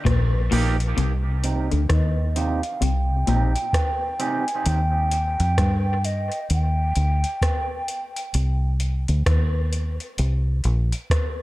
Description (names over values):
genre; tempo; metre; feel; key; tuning
dub reggae; 65 BPM; 4/4; swing 61% on 16ths; C minor; A4 = 440 Hz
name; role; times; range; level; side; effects
electric guitar at the edge of break-up; riff; 0.1-3.4 s; Bb2 to Eb3; -28 LUFS; left 5 dB; low-pass filter, dub echo
deep dub fingered electric bass; bass; 0.1-10.9 s; Bb1 to G2; -21 LUFS; equal; none
soft vintage rhythm box; drums; 0.1-11.4 s; hi-hat, kick drum, rim click; -25 LUFS; equal; overdrive
electric guitar at the edge of break-up; accompaniment; 0.5-4.4 s; Bb3 to G4; -29 LUFS; right 5 dB; low-pass filter, dub echo
breathy mellow concert flute; melody; 1.9-7.9 s; Eb5 to Ab5; -27 LUFS; right 1 dB; low-pass filter, dub echo
room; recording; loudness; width
little or no reverb; none; -20 LUFS; side -18 dB against mid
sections
1.0-11.4 A section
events
break 0.0-1.0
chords
0.0 Eb; 1.0 Cm; 4.7 Eb; 8.3 Cm